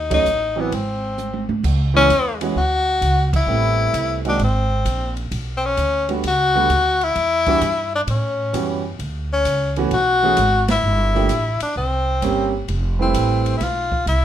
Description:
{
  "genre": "jazz, small-group swing and bop",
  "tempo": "130 BPM",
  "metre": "4/4",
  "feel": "swing 68% on 8ths",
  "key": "unclear",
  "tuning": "A4 = 440 Hz",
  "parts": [
    { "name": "breathy tenor saxophone", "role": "melody", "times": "0.0-14.2 s", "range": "B3 to F#4", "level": "-19 LUFS", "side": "left 2 dB", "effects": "none" },
    { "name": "upright bass", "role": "bass", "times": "0.0-14.2 s", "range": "F1 to A2", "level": "-22 LUFS", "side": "right 1 dB", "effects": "none" },
    { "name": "clear concert grand piano", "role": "accompaniment", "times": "0.1-13.6 s", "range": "D3 to B4", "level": "-23 LUFS", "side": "right 6 dB", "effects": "none" },
    { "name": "open jazz drum kit", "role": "drums", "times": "0.1-14.2 s", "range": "crash cymbal, hi-hat, kick drum, ride cymbal, snare drum, toms", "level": "-29 LUFS", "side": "right 1 dB", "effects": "none" }
  ],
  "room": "moderate club reverb, RT60 0.6 s",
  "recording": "minimal, uncompressed stereo recording",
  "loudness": "-17 LUFS",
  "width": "side -10 dB against mid",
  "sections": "0.0-1.6 A section; 1.6-14.2 B section",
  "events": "band accent 0.0, 3.2, 10.6; drum fill 1.2-1.6",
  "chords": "0.0 D#m7b5; 0.7 G#; 1.6 C#m7; 3.5 Am7; 4.4 G#add9; 5.3 Gmaj9; 7.2 Em7; 8.1 A13; 9.0 Dmaj13; 10.8 Gm9; 11.8 C5; 12.7 Fmaj9#11"
}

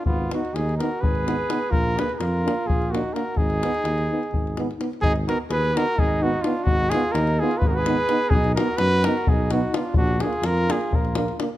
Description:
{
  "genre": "balkan folk, Balkan brass band",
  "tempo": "255 BPM (eighths)",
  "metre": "7/8",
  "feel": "straight",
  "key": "Ab dorian sharp4",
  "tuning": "A4 = 440 Hz",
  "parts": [
    { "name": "mellow cornet", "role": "melody", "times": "0.0-11.4 s", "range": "F4 to Cb5", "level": "-25 LUFS", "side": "equal", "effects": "none" },
    { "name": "mellow flugelhorn", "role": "second line", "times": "0.0-11.4 s", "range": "Cb4 to Ab4", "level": "-30 LUFS", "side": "right 2 dB", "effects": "none" },
    { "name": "dark tuba", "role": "bass", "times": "0.0-11.3 s", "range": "Ab1 to F#2", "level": "-26 LUFS", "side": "equal", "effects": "none" },
    { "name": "davul", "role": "percussion", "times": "0.1-11.5 s", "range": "none", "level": "-25 LUFS", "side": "left 2 dB", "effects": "none" },
    { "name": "clear euphonium", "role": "accompaniment", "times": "0.3-11.5 s", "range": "Bb3 to B3", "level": "-31 LUFS", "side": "right 6 dB", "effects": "none" },
    { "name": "mellow euphonium", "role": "accompaniment", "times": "0.3-11.5 s", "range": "D4 to D#4", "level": "-31 LUFS", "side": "left 4 dB", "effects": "none" }
  ],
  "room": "light reverb",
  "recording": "close, detailed microphones",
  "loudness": "-20 LUFS",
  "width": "side -14 dB against mid",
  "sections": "0.0-5.0 A section; 5.0-11.6 B section",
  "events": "none",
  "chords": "0.1 Abm; 1.7 Bb; 3.4 Abm; 8.3 B; 10.0 Bb"
}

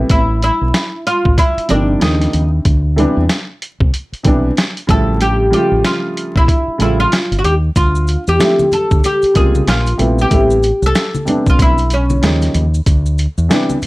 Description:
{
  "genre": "hip hop, jazz-hop",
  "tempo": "94 BPM",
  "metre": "4/4",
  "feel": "swing 60% on 16ths",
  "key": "A minor",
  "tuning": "A4 = 441 Hz",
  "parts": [
    { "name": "warm upright piano", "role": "accompaniment", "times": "0.0-13.8 s", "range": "C3 to F4", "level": "-17 LUFS", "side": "right 1 dB", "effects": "none" },
    { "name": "deep dub fingered electric bass", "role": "bass", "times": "0.0-13.5 s", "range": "G1 to E2", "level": "-15 LUFS", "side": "equal", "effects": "none" },
    { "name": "oud", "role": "melody", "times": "0.1-12.5 s", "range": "C#4 to A4", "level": "-16 LUFS", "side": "equal", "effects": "none" },
    { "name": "boom bap sampler-style drum kit", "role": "drums", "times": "0.1-13.9 s", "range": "hi-hat, kick drum, snare drum", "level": "-15 LUFS", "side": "equal", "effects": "none" },
    { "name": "maracas and congas", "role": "percussion", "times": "7.8-13.9 s", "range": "none", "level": "-25 LUFS", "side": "left 2 dB", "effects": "none" }
  ],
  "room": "light reverb",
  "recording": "vinyl crackle",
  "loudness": "-11 LUFS",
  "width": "side -20 dB against mid",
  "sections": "0.0-13.9 A section",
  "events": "none",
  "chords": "0.1 Am9; 2.0 D#9; 2.7 D13sus4; 4.9 A7b13; 7.8 Dm9; 9.7 Bbsus2; 10.3 Am9; 12.2 D#9; 12.9 D13sus4"
}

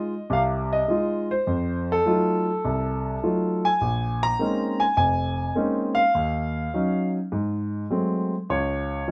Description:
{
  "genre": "solo jazz",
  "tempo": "102 BPM",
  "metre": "4/4",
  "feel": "swing 69% on 8ths",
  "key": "unclear",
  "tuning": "A4 = 440 Hz",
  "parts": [
    { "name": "warm concert grand piano", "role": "solo", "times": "0.0-9.1 s", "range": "F1 to Bb5", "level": "-24 LUFS", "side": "equal", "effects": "none" }
  ],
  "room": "light reverb",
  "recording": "none",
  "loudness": "-24 LUFS",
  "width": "mono",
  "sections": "0.0-9.1 A section",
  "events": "none",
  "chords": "0.0 Fm7; 1.5 F7b9; 3.8 Bbm11; 6.2 Ebm7; 7.3 Ab7b9; 8.5 N.C."
}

